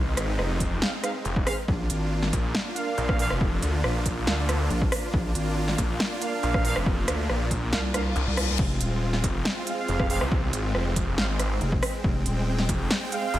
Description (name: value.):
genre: heavy wobble dubstep.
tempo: 139 BPM.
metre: 4/4.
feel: half-time.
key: F dorian.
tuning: A4 = 439 Hz.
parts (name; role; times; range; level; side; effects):
supersaw chords; sustained chords; 0.0-13.4 s; Ab3 to G5; -32 LUFS; equal; sidechain pumping.
snarling distorted saw bass; bass; 0.0-13.4 s; F1 to D2; -27 LUFS; equal; distortion, overdrive.
big-room dance drum kit; drums; 0.2-13.4 s; crash cymbal, hi-hat, rim click, snare drum; -29 LUFS; equal; overdrive.
electronic kick drum; drums; 0.6-12.8 s; none; -28 LUFS; equal; overdrive.
mellow brass ensemble; stabs; 0.8-13.4 s; C4 to F5; -33 LUFS; right 3 dB; dub echo.
wobble bass; bass; 1.7-12.7 s; Eb1 to C2; -26 LUFS; equal; chorus, overdrive.
reverse cymbal; sound effects; 7.9-8.6 s; none; -33 LUFS; left 7 dB; none.
room: little or no reverb.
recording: none.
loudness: -23 LUFS.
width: side -14 dB against mid.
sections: 0.0-13.4 A section.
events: kick drops out 7.7-8.6; reverse cymbal 7.9-8.6.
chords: 0.0 Fm; 1.7 Bb; 8.6 Fm.